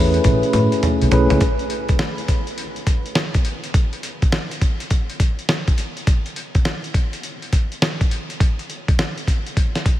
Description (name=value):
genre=R&B, new jack swing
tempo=103 BPM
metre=4/4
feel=swing 64% on 16ths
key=unclear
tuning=A4 = 440 Hz
part: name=tine electric piano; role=accompaniment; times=0.0-1.4 s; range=A3 to B4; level=-21 LUFS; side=equal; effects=fast stereo tremolo
part: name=vintage muted fingered electric bass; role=bass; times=0.0-1.4 s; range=A1 to A2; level=-18 LUFS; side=equal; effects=none
part: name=dusty soul sampler-style drum kit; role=drums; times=0.1-10.0 s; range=hi-hat, kick drum, snare drum, toms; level=-19 LUFS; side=equal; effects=none
room=moderate huge ambient reverb, RT60 7.5 s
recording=dreamy mix soaked in reverb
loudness=-17 LUFS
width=side -14 dB against mid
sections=0.0-1.4 A section; 1.4-10.0 B section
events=drum fill 0.2-1.4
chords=0.0 Amaj9; 1.4 N.C.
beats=0.25 0.83 | 1.41 1.99 2.58 3.16 | 3.74 4.32 4.91 5.49 | 6.07 6.65 7.24 7.82 | 8.40 8.98 9.57